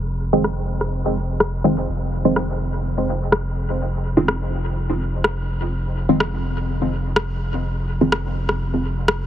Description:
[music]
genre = dub techno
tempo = 125 BPM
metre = 4/4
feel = straight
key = F minor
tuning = A4 = 440 Hz
[part]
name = warm sub bass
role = bass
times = 0.0-9.3 s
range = F1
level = -24 LUFS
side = equal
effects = none
[part]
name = filtered dub chord stab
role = stabs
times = 0.3-8.1 s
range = Eb3 to C4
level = -22 LUFS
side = equal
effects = phaser, dub echo
[part]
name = electronic rim click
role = drums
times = 0.4-9.2 s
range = none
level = -24 LUFS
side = left 1 dB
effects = dub echo
[sound]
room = light reverb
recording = heavily compressed radio sound, low-pass filter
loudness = -19 LUFS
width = side -10 dB against mid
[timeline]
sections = 0.0-9.3 A section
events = filter sweep on synth stab 0.0-9.3; filter sweep 0.0-9.3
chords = none

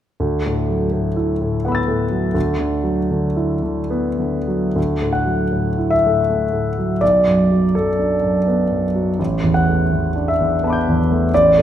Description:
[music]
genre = classical, impressionist solo piano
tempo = 66-88 BPM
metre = 3/4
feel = rubato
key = D major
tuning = A4 = 440 Hz
[part]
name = clear concert grand piano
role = solo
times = 0.2-11.6 s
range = A1 to A6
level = -16 LUFS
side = equal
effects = none
[sound]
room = moderate recital hall reverb, RT60 1.4 s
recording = none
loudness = -16 LUFS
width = side -10 dB against mid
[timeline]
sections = 0.2-4.8 A section; 4.8-11.6 B section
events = none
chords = 0.2 D69; 2.4 Esus2/D; 4.8 Dadd9; 7.0 Bm7; 9.2 A11

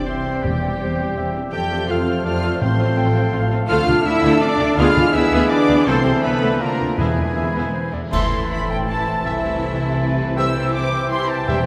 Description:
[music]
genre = classical, dramatic, fast romantic movement for symphony orchestra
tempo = 164 BPM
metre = 3/4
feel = straight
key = A minor from 3.7 s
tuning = A4 = 441 Hz
[part]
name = warm symphonic violin section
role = melody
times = 0.0-11.7 s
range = E5 to G6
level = -31 LUFS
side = equal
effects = none
[part]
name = clear oboe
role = second line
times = 0.0-11.7 s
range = G4 to A5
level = -30 LUFS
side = equal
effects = none
[part]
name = large flute ensemble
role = second line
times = 0.0-11.7 s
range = C5 to E6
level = -32 LUFS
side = equal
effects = none
[part]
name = rich symphonic violin section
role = second line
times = 0.0-11.7 s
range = E4 to G5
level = -33 LUFS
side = equal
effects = none
[part]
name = warm clarinet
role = second line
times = 0.0-11.7 s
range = B4 to G5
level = -32 LUFS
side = equal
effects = none
[part]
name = mellow bassoon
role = accompaniment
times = 0.0-11.7 s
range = E3 to A3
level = -32 LUFS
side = equal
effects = none
[part]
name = dark French horn section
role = sustained chords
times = 0.0-11.6 s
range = G3 to G4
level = -29 LUFS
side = equal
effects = none
[part]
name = warm trombone section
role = sustained chords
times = 0.0-11.6 s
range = D3 to D4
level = -32 LUFS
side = equal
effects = none
[part]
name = concert harp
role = arpeggios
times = 0.0-11.7 s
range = A2 to C6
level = -28 LUFS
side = equal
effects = none
[part]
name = mellow trumpet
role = stabs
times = 0.0-11.6 s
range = E4 to E5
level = -32 LUFS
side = equal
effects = none
[part]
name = warm symphonic cello section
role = bass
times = 0.0-11.7 s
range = E2 to G4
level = -28 LUFS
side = equal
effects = none
[part]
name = warm symphonic double bass section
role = bass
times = 0.0-11.7 s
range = E1 to F2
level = -27 LUFS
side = equal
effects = none
[part]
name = rich studio viola section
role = accompaniment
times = 0.1-11.7 s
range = E3 to A4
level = -29 LUFS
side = equal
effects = none
[part]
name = timpani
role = percussion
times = 0.4-3.1, 7.0-7.5, 11.5-11.7 s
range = E2 to A2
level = -28 LUFS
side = equal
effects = none
[part]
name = cymbal swell, clash cymbals and concert bass drum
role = percussion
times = 5.9-8.8 s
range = none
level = -32 LUFS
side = equal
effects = none
[sound]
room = wet cathedral reverb, RT60 5.2 s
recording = in a vast, echoing space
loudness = -19 LUFS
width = mono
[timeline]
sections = 0.0-8.1 A section; 8.1-11.7 B section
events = band accent 8.1-8.5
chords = 0.4 C/E; 1.5 F; 2.6 F/A; 3.7 Dm; 4.8 E7/D; 5.9 Am/C; 6.6 Bb/D; 7.0 E; 8.1 Am; 9.2 Am/C; 10.4 C

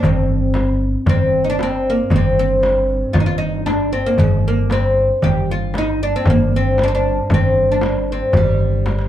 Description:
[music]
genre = Arabic maqam ensemble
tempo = 116 BPM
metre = 4/4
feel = straight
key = G maqam bayati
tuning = A4 = 440 Hz
[part]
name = oud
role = melody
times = 0.0-9.1 s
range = G3 to G4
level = -18 LUFS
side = equal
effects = plate reverb
[part]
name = upright bass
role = bass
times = 0.0-9.1 s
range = G1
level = -20 LUFS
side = equal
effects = none
[part]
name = warm double bass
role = drone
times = 0.0-9.1 s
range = G2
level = -27 LUFS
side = equal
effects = none
[part]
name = darbuka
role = percussion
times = 0.0-9.1 s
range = none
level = -22 LUFS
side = right 2 dB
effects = none
[part]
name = frame drum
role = percussion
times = 0.0-9.0 s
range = none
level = -20 LUFS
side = left 1 dB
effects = none
[sound]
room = light reverb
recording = dark, warm production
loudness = -14 LUFS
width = side -12 dB against mid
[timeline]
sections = 0.0-9.1 A section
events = drum fill 8.9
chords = none

